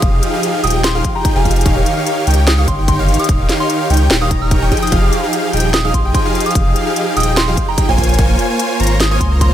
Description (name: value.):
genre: future bass.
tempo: 147 BPM.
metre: 4/4.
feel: half-time.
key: F minor.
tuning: A4 = 440 Hz.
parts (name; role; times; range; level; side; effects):
soft synth bell; melody; 0.0-9.5 s; Ab5 to F6; -22 LUFS; right 1 dB; chorus, phaser, sidechain pumping, ping-pong delay.
airy dreamy lead; arpeggios; 0.0-9.5 s; F5 to Bb5; -23 LUFS; equal; chorus, sidechain pumping, ping-pong delay.
supersaw chords; riff; 0.0-9.5 s; Eb3 to Bb5; -18 LUFS; equal; sidechain pumping.
saturated sub bass; bass; 0.0-9.5 s; Eb1 to Db2; -15 LUFS; equal; sidechain pumping.
electronic kick drum; drums; 0.0-9.5 s; none; -16 LUFS; equal; none.
trap drum kit; drums; 0.0-9.5 s; hi-hat, snare drum; -19 LUFS; left 1 dB; none.
room: little or no reverb.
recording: none.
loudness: -12 LUFS.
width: side -11 dB against mid.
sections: 0.0-9.5 A section.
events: none.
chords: 0.0 Fm7; 1.7 Eb7; 4.7 Fm7; 8.0 Bbm7.